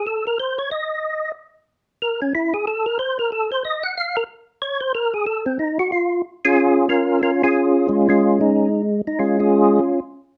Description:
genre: jazz.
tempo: 184 BPM.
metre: 4/4.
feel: swing 62% on 8ths.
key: unclear.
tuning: A4 = 440 Hz.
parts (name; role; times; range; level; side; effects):
percussive tonewheel organ; solo; 0.0-10.0 s; Ab3 to Gb5; -20 LUFS; equal; slow rotary speaker, chorus vibrato.
room: light reverb.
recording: close, detailed microphones.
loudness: -20 LUFS.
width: mono.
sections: 0.0-6.6 A section; 6.6-10.4 B section.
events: tonewheel organ solo 0.0-6.6.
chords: 0.0 N.C.; 5.3 Cmadd11; 6.6 Db69.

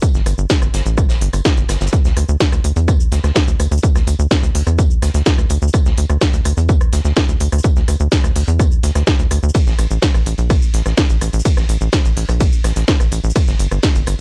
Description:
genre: melodic techno.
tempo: 126 BPM.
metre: 4/4.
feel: straight.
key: unclear.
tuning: A4 = 445 Hz.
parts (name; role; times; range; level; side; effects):
electronic kick drum; drums; 0.0-13.9 s; none; -14 LUFS; equal; none.
street-band drum kit; drums; 0.0-14.2 s; hi-hat, snare drum, tambourine; -32 LUFS; equal; high-pass filter on hats, high-pass filter on snare, high-pass filter on perc, high-pass filter on room.
techno drum kit; drums; 0.0-14.2 s; hi-hat, ride cymbal, rim click, shaker, snare drum; -21 LUFS; equal; none.
tight sequencer bass; bass; 0.1-14.2 s; G1 to E2; -16 LUFS; equal; sidechain pumping.
room: little or no reverb.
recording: dry, gritty hardware recording, cassette tape.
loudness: -12 LUFS.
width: side -33 dB against mid.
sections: 0.0-14.2 A section.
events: none.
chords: none.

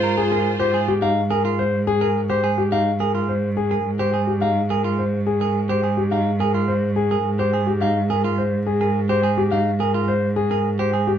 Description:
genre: classical, minimalist pattern music.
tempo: 106 BPM.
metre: 3/4.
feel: straight.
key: Ab major.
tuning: A4 = 436 Hz.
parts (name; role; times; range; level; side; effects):
dark concert grand piano; melody; 0.0-11.2 s; G4 to F5; -22 LUFS; left 6 dB; none.
mellow alto flute; second line; 0.0-0.8 s; F4; -28 LUFS; right 5 dB; none.
clear studio string section; sustained chords; 0.0-0.8 s; F4 to C5; -27 LUFS; right 1 dB; none.
clean electric guitar; arpeggios; 0.0-11.1 s; Eb4 to Bb4; -25 LUFS; right 7 dB; none.
clear cello; bass; 0.0-11.2 s; Ab2; -22 LUFS; right 2 dB; none.
room: light reverb.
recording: dark, warm production.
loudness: -18 LUFS.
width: side -9 dB against mid.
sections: 0.0-11.2 A section.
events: none.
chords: 0.0 Ab69.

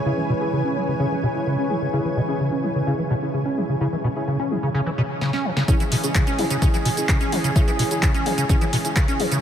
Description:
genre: acid house.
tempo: 128 BPM.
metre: 4/4.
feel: straight.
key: C# minor.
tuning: A4 = 441 Hz.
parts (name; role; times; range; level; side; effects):
warm analog pad; sustained chords; 0.0-9.4 s; E3 to B4; -28 LUFS; right 2 dB; lush chorus, sidechain pumping.
granular cloud pad; texture; 0.0-4.7 s; E4 to G#5; -30 LUFS; equal; built-in reverb, sidechain pumping.
deep acid bass; riff; 0.1-9.4 s; B2 to C#4; -23 LUFS; equal; overdrive, wide subtle chorus, diffuse ambient delay.
deep mellow chord stab; stabs; 0.1-9.3 s; C#4 to G#4; -29 LUFS; left 2 dB; chorus, diffuse ambient delay.
punchy analog drum machine; drums; 5.2-9.4 s; handclaps, hi-hat, shaker, snare drum; -27 LUFS; equal; overdrive.
electronic kick drum; drums; 5.7-9.1 s; none; -20 LUFS; equal; overdrive.
room: wet huge ambient reverb, RT60 8.6 s.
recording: dreamy mix soaked in reverb.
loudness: -19 LUFS.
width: side -9 dB against mid.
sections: 0.0-5.7 A section; 5.7-9.4 B section.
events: filter sweep on acid bass 0.0-5.7; drum fill 5.2-5.7; drop 5.7-9.4.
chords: 0.0 C#m.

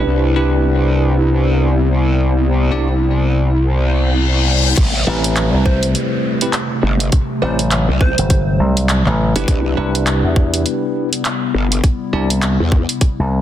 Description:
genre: glitch hop.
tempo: 102 BPM.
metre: 4/4.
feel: swing 59% on 16ths.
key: A dorian.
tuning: A4 = 440 Hz.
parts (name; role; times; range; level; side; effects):
warbly tape-like pad; sustained chords; 0.0-13.4 s; C3 to E4; -20 LUFS; left 2 dB; chorus, built-in reverb, sidechain pumping.
bell-like tine electric piano; stabs; 0.0-12.3 s; C4 to D5; -21 LUFS; equal; fast stereo tremolo, sidechain pumping, digital delay.
growl bass; bass; 0.0-12.9 s; G1 to E2; -16 LUFS; equal; chorus.
reverse cymbal and downlifter; sound effects; 3.8-9.5 s; none; -23 LUFS; left 3 dB; none.
drum and bass drum kit; drums; 4.8-13.2 s; crash cymbal, handclaps, hi-hat, rim click; -21 LUFS; equal; none.
electronic kick drum; drums; 4.8-13.2 s; none; -14 LUFS; equal; none.
slap bass with an envelope filter; bass; 5.1-13.4 s; G1 to E2; -16 LUFS; equal; none.
plucky unison lead; melody; 5.7-8.6 s; C5; -24 LUFS; right 2 dB; cassette tape, digital delay.
room: light reverb.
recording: dense, heavily limited modern master.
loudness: -13 LUFS.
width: side -11 dB against mid.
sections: 0.0-4.8 A section; 4.8-13.4 B section.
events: reverse cymbal 3.8-4.8; drop 4.8-13.4.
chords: 0.1 Cmaj7; 4.8 Am7; 9.5 Cmaj7.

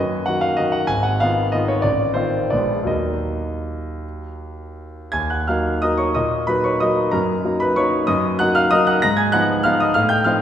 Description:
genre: classical, piano waltz.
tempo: 151-204 BPM.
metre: 3/4.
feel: rubato.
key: Eb minor.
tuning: A4 = 440 Hz.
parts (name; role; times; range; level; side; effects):
clear concert grand piano; solo; 0.0-10.4 s; Ab1 to Bb6; -17 LUFS; equal; none.
room: wet scoring stage reverb, RT60 2.0 s.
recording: heard from further back in the room.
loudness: -17 LUFS.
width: side -10 dB against mid.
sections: 0.0-5.1 A section; 5.1-10.4 A section.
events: none.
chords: 0.0 Ebm/Gb; 0.9 Fm7b5/Ab; 1.8 F7/A; 2.5 Bb7b9; 2.9 Ebm; 7.1 Ebm/Gb; 9.0 Fm7b5/Ab.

